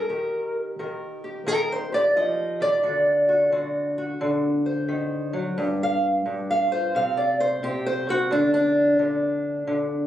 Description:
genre	acoustic country blues, solo or duo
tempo	88 BPM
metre	4/4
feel	swing 65% on 8ths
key	unclear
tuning	A4 = 436 Hz
part	fingerpicked steel-string acoustic guitar	solo	0.0-10.1 s	G2 to F5	-21 LUFS	equal	none
room	moderate small room reverb, RT60 0.6 s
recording	recorded on a phone in the room, club reverb, compression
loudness	-21 LUFS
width	side -12 dB against mid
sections	0.0-10.1 A section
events	steel-string acoustic guitar solo 0.0-10.1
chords	0.1 Eb; 2.8 D7; 5.6 G7sus4; 6.9 C9sus4; 8.3 N.C.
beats	| 0.11 0.79 1.48 2.16 | 2.85 3.53 4.21 4.90 | 5.58 6.26 6.95 7.63 | 8.31 8.99 9.68

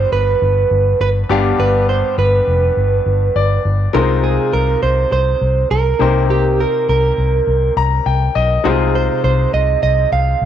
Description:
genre	1980s-style pop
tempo	102 BPM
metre	4/4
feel	swing 55% on 16ths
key	unclear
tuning	A4 = 440 Hz
part	direct-recorded clean electric guitar	melody	0.0-10.5 s	G4 to F5	-17 LUFS	right 5 dB	cassette tape, plate reverb
part	clear concert grand piano	accompaniment	0.0-10.5 s	G2 to Bb5	-20 LUFS	left 8 dB	cassette tape, plate reverb
part	vintage muted fingered electric bass	bass	0.0-10.5 s	F1 to C2	-16 LUFS	equal	none
room	moderate studio reverb, RT60 0.6 s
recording	home recording on cassette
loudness	-13 LUFS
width	side -10 dB against mid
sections	0.0-3.9 A section; 3.9-10.5 B section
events	grand piano fill 3.1-3.9, 7.5-8.7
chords	0.0 G; 3.9 Fm7/C; 6.0 Cm7; 8.7 Fm7/C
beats	0.42 1.00 | 1.59 2.18 2.77 3.36 | 3.94 4.53 5.12 5.71 | 6.30 6.89 7.47 8.06 | 8.65 9.24 9.83 10.42

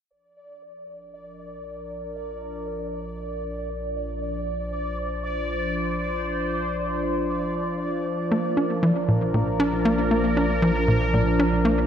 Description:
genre	ambient, sequencer-driven space music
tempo	117 BPM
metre	4/4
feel	straight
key	Bb major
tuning	A4 = 435 Hz
part	sweeping resonant pad	sustained chords	0.1-11.9 s	F3 to C5	-26 LUFS	equal	chorus
part	round analog bass	bass	0.1-11.9 s	Bb1	-32 LUFS	equal	none
part	bubbling stepped-filter texture	texture	0.1-11.9 s	D5	-32 LUFS	right 1 dB	chorus, built-in reverb
part	tight sequencer bass	riff	8.3-11.8 s	Bb2 to D4	-22 LUFS	equal	tape echo
room	wet concert hall reverb, RT60 2.1 s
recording	none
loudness	-22 LUFS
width	side -9 dB against mid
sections	0.1-11.9 A section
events	fade-in on analog synth pad 0.1-11.9; fade-in on analog synth bass 0.1-11.9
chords	0.1 Bb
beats	| 0.11 0.62 1.14 1.65 | 2.16 2.67 3.19 3.70 | 4.21 4.72 5.24 5.75 | 6.26 6.78 7.29 7.80 | 8.31 8.83 9.34 9.85 | 10.37 10.88 11.39

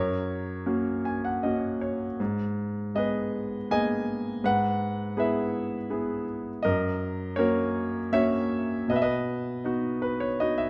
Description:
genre	classical, lyrical solo piano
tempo	80 BPM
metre	3/4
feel	rubato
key	unclear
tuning	A4 = 439 Hz
part	clear concert grand piano	solo	0.0-10.7 s	F#2 to G#5	-28 LUFS	equal	none
room	moderate recital hall reverb, RT60 1.5 s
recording	dark, warm production, nothing above 11.0 kHz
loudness	-28 LUFS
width	mono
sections	0.0-10.7 A section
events	grand piano fill 0.7-2.2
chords	0.0 F#; 2.2 G#madd9; 4.4 E/G#; 6.6 F#; 8.9 B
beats	0.66 1.43 | 2.19 2.96 3.71 | 4.45 5.18 5.91 | 6.64 7.38 8.12 | 8.88 9.64 10.41

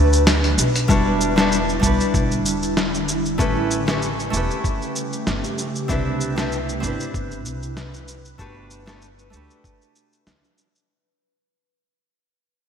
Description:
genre	sunset chillout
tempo	96 BPM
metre	4/4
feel	swing 55% on 16ths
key	unclear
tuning	A4 = 440 Hz
part	nylon-string guitar	accompaniment	0.0-10.9 s	G3 to B4	-23 LUFS	left 1 dB	auto-pan, digital delay
part	ethereal airy pad	sustained chords	0.0-10.9 s	C3 to B4	-27 LUFS	equal	ensemble chorus, built-in reverb, phaser
part	upright bass	bass	0.0-10.4 s	E1 to D2	-24 LUFS	equal	tube saturation
part	dusty soul sampler-style drum kit	drums	0.1-10.9 s	hi-hat, shaker, snare drum	-23 LUFS	equal	gated reverb
part	electronic kick drum	drums	0.9-9.8 s	none	-23 LUFS	equal	none
room	moderate lush hall reverb, RT60 2.8 s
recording	bright 1980s-style digital production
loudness	-18 LUFS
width	side -8 dB against mid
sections	0.9-10.9 A section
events	break 0.0-0.9; fade-out 0.9-10.9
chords	0.0 Gmaj7; 0.9 Em7; 3.4 A7; 5.9 Cmaj7; 8.4 Gmaj7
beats	0.27 | 0.89 1.52 2.14 2.77 | 3.39 4.02 4.64 5.27 | 5.89 6.52 7.14 7.77 | 8.39 9.02 9.64 10.27

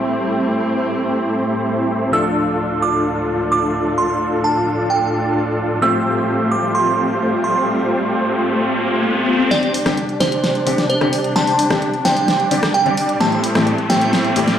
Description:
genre	EDM, festival progressive house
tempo	130 BPM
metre	4/4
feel	straight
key	C major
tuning	A4 = 444 Hz
part	clear concert grand piano	accompaniment	0.0-14.4 s	A2 to A4	-25 LUFS	left 4 dB	none
part	dark chamber string section	sustained chords	0.0-14.6 s	D2 to D4	-25 LUFS	equal	low-pass filter
part	supersaw chords	riff	0.0-14.6 s	A3 to D5	-19 LUFS	equal	low-pass filter, tape echo
part	glassy synth bell	melody	2.1-14.6 s	C5 to E6	-20 LUFS	right 2 dB	chorus, tape echo
part	riser	sound effects	7.4-14.6 s	none	-24 LUFS	left 2 dB	none
part	big-room dance drum kit	drums	9.5-14.6 s	hi-hat, rim click, snare drum	-21 LUFS	equal	studio reverb
room	moderate digital room reverb, RT60 1.0 s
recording	played on a big sound system in a bare room, stone room reverb, faint mains hum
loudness	-15 LUFS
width	side -9 dB against mid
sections	0.0-9.5 A section; 9.5-14.6 B section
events	riser 7.4-9.5, 9.5-14.6; build-up 9.5-14.6; drum fill 9.5-14.6; filter sweep on supersaw synth 9.5-14.6; filter sweep on string section 9.5-14.6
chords	0.0 Am7; 2.1 Dm; 5.8 Fadd9; 9.5 Csus2; 13.2 Am7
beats	| 0.28 0.74 1.21 1.67 | 2.13 2.59 3.05 3.51 | 3.98 4.44 4.90 5.36 | 5.82 6.28 6.75 7.21 | 7.67 8.13 8.59 9.05 | 9.51 9.98 10.44 10.90 | 11.36 11.82 12.28 12.74 | 13.21 13.67 14.13

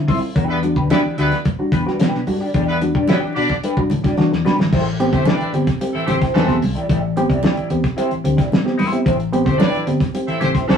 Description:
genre	funk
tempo	111 BPM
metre	4/4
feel	straight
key	A dorian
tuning	A4 = 441 Hz
part	reed electric piano	stabs	0.0-10.5 s	A2 to G4	-22 LUFS	right 1 dB	none
part	semi-hollow electric guitar	accompaniment	0.1-10.8 s	D4 to E5	-24 LUFS	left 2 dB	wah
part	damped 70s drum kit	drums	0.1-10.8 s	crash cymbal, hi-hat, kick drum, snare drum	-19 LUFS	left 1 dB	none
part	congas	percussion	0.1-10.8 s	none	-25 LUFS	right 4 dB	none
part	fingered electric bass	bass	0.4-10.8 s	G1 to E3	-22 LUFS	left 3 dB	none
part	clear horn section	second line	0.5-10.8 s	E3 to E5	-22 LUFS	right 1 dB	none
room	wet studio reverb, RT60 0.6 s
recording	rough rehearsal-room recording, vinyl crackle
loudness	-15 LUFS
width	side -7 dB against mid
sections	0.0-4.7 A section; 4.7-10.8 B section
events	drum fill 4.2-4.7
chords	0.4 Em7; 4.7 Am7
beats	| 0.36 0.91 1.46 2.00 | 2.55 3.09 3.64 4.18 | 4.72 5.27 5.81 6.35 | 6.89 7.43 7.98 8.52 | 9.06 9.60 10.14 10.68

